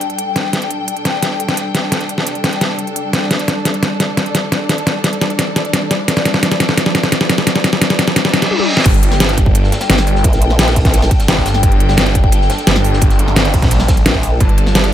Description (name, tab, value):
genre	dark technical drum and bass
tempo	173 BPM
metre	4/4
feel	straight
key	G minor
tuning	A4 = 440 Hz
part	warm studio string section	sustained chords	0.0-14.9 s	G3 to A5	-20 LUFS	left 2 dB	sidechain pumping
part	dubstep drum kit	drums	0.0-14.9 s	crash cymbal, hi-hat, snare drum, toms	-15 LUFS	equal	none
part	riser and reverse cymbal	sound effects	0.8-8.9 s	none	-23 LUFS	equal	none
part	snarling distorted saw bass	bass	8.9-14.9 s	G1 to Bb1	-14 LUFS	equal	distortion, overdrive
part	crunchy breakbeat drum kit	drums	8.9-14.9 s	hi-hat, ride cymbal, snare drum	-26 LUFS	equal	high-pass filter on cymbals, high-pass filter on hats, high-pass filter on snare, high-pass filter on room
part	electronic kick drum	drums	8.9-14.5 s	none	-13 LUFS	equal	none
part	formant-sweep wobble bass	bass	10.2-11.1, 14.1-14.4 s	Bb1	-14 LUFS	equal	chorus
room	small room ambience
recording	none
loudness	-11 LUFS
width	side -11 dB against mid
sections	0.0-8.9 A section; 8.9-14.9 B section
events	build-up 0.0-8.9; drum fill 0.0-8.5, 8.5-8.9; reverse cymbal 8.2-8.9; drop 8.9-14.9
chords	0.0 G5